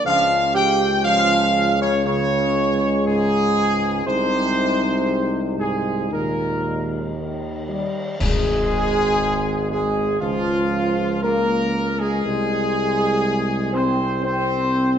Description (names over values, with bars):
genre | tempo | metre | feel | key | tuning
classical, ceremonial fanfare | 60 BPM | 4/4 | straight | Ab major | A4 = 440 Hz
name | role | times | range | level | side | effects
dark French horn section | sustained chords | 0.0-15.0 s | Eb3 to Eb4 | -25 LUFS | left 4 dB | none
clear trumpet section | melody | 0.1-15.0 s | F4 to G5 | -21 LUFS | equal | none
mellow trombone section | sustained chords | 0.1-15.0 s | Ab2 to G4 | -26 LUFS | right 2 dB | none
warm tuba | bass | 0.1-15.0 s | Ab1 to Eb2 | -24 LUFS | right 2 dB | none
cymbal swell, clash cymbals and concert bass drum | percussion | 4.1-10.2 s | none | -28 LUFS | left 1 dB | none
room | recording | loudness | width
wet scoring stage reverb, RT60 1.7 s | dark, warm production, nothing above 8.0 kHz | -18 LUFS | side -8 dB against mid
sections
0.0-8.2 A section; 8.2-15.0 B section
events
band accent 8.2-9.2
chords
0.1 Db5; 4.1 Ab/C; 6.1 Eb; 8.2 N.C.; 10.2 Db; 12.2 Ab/C